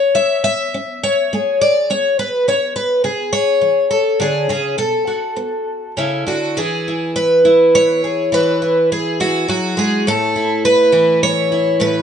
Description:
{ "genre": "folk, solo fingerstyle acoustic guitar", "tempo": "104 BPM", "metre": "3/4", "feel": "rubato", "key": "A major", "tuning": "A4 = 440 Hz", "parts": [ { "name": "picked twelve-string acoustic guitar", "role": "solo", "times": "0.0-12.0 s", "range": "A2 to E5", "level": "-14 LUFS", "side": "equal", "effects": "none" } ], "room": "moderate studio reverb, RT60 0.8 s", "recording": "band playing live in one room, nothing above 10.3 kHz", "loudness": "-14 LUFS", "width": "side -8 dB against mid", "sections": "0.0-6.6 A section; 6.6-12.0 B section", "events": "none", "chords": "0.0 A; 1.3 Amaj9; 3.0 C#m; 4.8 Bm7; 6.6 E; 10.1 A" }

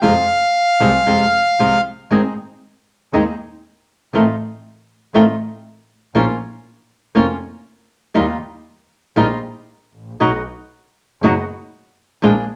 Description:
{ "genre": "tango", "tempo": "119 BPM", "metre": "4/4", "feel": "rubato", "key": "unclear", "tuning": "A4 = 441 Hz", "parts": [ { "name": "bandoneon", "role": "melody", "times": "0.0-1.8 s", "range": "F5", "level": "-16 LUFS", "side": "equal", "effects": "none" }, { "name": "flamenco guitar", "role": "accompaniment", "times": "0.0-12.3 s", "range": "B2 to Ab4", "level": "-18 LUFS", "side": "equal", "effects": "none" }, { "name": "bandoneon", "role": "stabs", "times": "0.0-12.4 s", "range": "G3 to Ab4", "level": "-28 LUFS", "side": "equal", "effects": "none" }, { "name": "clear double bass", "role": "bass", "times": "0.0-12.4 s", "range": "F1 to F2", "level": "-26 LUFS", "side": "equal", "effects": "none" } ], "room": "moderate studio reverb, RT60 0.8 s", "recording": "none", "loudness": "-17 LUFS", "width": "mono", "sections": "0.0-2.1 A section; 2.1-12.6 B section", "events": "none", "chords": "0.0 Fm; 2.1 Ab; 4.1 F7/A; 6.1 Bbm; 8.2 Ebadd9; 10.2 B" }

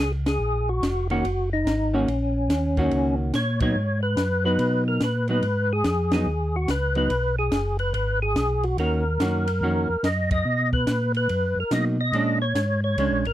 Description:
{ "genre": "soul jazz organ trio", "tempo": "143 BPM", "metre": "4/4", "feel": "swing 65% on 8ths", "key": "Eb minor", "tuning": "A4 = 439 Hz", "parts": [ { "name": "percussive tonewheel organ", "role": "melody", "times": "0.0-13.3 s", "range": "Db4 to Eb5", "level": "-25 LUFS", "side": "left 1 dB", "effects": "slow rotary speaker, chorus vibrato" }, { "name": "mellow tonewheel organ", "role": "bass", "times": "0.0-13.3 s", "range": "F1 to Cb3", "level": "-25 LUFS", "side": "equal", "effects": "chorus vibrato, slow rotary speaker" }, { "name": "compact cocktail drum kit", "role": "drums", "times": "0.3-13.3 s", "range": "hi-hat, kick drum, ride cymbal, snare drum", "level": "-28 LUFS", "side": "equal", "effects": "none" }, { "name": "vintage hollow-body jazz guitar", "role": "accompaniment", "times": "1.1-13.2 s", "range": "Eb3 to Gb4", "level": "-25 LUFS", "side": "right 2 dB", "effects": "none" } ], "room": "light reverb", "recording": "dry, close 1970s-style studio recording", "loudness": "-21 LUFS", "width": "side -13 dB against mid", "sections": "0.0-13.3 A section", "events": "band accent 0.2, 3.5, 6.1, 10.2", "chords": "0.0 Ebm7; 3.8 Abm7; 8.8 Ebm7; 10.5 Bmaj7; 12.1 Bb7#9" }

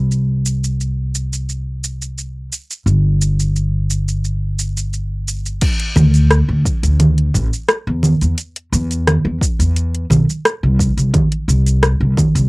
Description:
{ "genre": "sunset chillout", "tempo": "87 BPM", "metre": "4/4", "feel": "straight", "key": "unclear", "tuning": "A4 = 441 Hz", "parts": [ { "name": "upright bass", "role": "bass", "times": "0.0-12.5 s", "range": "G1 to E2", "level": "-15 LUFS", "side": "equal", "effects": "tube saturation" }, { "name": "deep house drum kit", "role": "drums", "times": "0.1-12.5 s", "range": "congas, crash cymbal, hi-hat, rim click, shaker", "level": "-16 LUFS", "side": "right 1 dB", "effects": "overdrive, cassette tape" }, { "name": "electronic kick drum", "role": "drums", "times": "5.6-12.3 s", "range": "none", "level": "-19 LUFS", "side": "equal", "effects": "overdrive, cassette tape" } ], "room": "light reverb", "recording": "home recording on cassette", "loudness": "-14 LUFS", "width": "side -25 dB against mid", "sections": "0.0-5.6 A section; 5.6-12.5 B section", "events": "none", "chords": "none" }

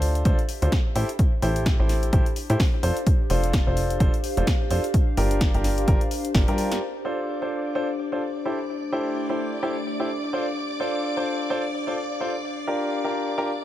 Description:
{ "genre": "piano house", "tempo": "128 BPM", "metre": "4/4", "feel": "swing 58% on 16ths", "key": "D minor", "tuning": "A4 = 440 Hz", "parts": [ { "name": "warm grand piano", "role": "riff", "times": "0.0-13.5 s", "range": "D4 to C5", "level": "-27 LUFS", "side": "equal", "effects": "sidechain pumping, ping-pong delay" }, { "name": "plucky analog bass", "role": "bass", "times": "0.0-6.8 s", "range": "F1 to A2", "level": "-24 LUFS", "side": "equal", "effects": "sidechain pumping" }, { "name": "punchy analog drum machine", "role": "drums", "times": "0.0-6.8 s", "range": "hi-hat, snare drum", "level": "-32 LUFS", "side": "left 1 dB", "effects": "low-pass filter on hats, low-pass filter on snare" }, { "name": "warbly tape-like pad", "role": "texture", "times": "0.2-13.6 s", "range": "A3 to F5", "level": "-31 LUFS", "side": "left 2 dB", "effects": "chorus, built-in reverb, sidechain pumping" }, { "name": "electronic kick drum", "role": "drums", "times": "0.3-6.5 s", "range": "none", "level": "-21 LUFS", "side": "equal", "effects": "none" }, { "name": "string machine, violins", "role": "sustained chords", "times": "6.8-13.6 s", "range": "D5 to D6", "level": "-33 LUFS", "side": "right 1 dB", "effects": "ensemble chorus, sidechain pumping" } ], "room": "light reverb", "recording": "none", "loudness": "-21 LUFS", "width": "side -13 dB against mid", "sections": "0.0-6.8 A section; 6.8-13.6 B section", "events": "drum fill 6.3-6.8", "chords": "0.0 Dm7; 1.0 Am7; 2.8 F6; 4.9 Gm7; 6.8 Dm7; 8.5 Am7; 10.3 F6; 12.4 Gm7" }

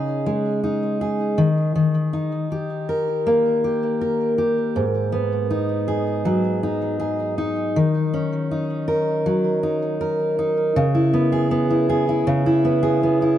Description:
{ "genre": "pop", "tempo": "80 BPM", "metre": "4/4", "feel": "straight", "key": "unclear", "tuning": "A4 = 440 Hz", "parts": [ { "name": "fingerpicked steel-string acoustic guitar", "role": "solo", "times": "0.0-13.4 s", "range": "G#2 to A#4", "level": "-18 LUFS", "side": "equal", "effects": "digital delay" } ], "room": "light reverb", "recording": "dark, warm production", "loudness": "-18 LUFS", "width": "side -11 dB against mid", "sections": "0.0-10.8 A section; 10.8-13.4 B section", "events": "none", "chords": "0.0 C#sus2; 1.4 D#; 4.8 G#m7; 7.8 D#m7; 10.8 C#m7" }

